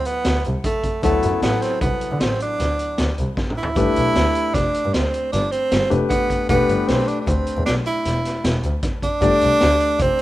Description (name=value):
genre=progressive instrumental, band music in an uneven meter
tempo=154 BPM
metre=7/4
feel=straight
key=unclear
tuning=A4 = 440 Hz
part: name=breathy tenor saxophone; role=melody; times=0.0-10.2 s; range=A3 to E4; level=-21 LUFS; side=right 2 dB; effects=none
part: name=clear grand piano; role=accompaniment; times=0.0-10.2 s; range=F#3 to D5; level=-24 LUFS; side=left 4 dB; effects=none
part: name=raw garage drum kit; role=drums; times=0.1-10.2 s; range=hi-hat, kick drum, snare drum, toms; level=-24 LUFS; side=equal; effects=vintage 12-bit sampler grit
part: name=rich double bass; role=bass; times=0.3-10.1 s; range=E1 to D3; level=-23 LUFS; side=equal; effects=none
room=small room ambience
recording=rough home demo mix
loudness=-17 LUFS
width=side -15 dB against mid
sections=0.0-10.2 A section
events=drum fill 3.4-3.8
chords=0.0 D (rootless); 3.8 G69; 6.5 Em7; 9.2 Gsus4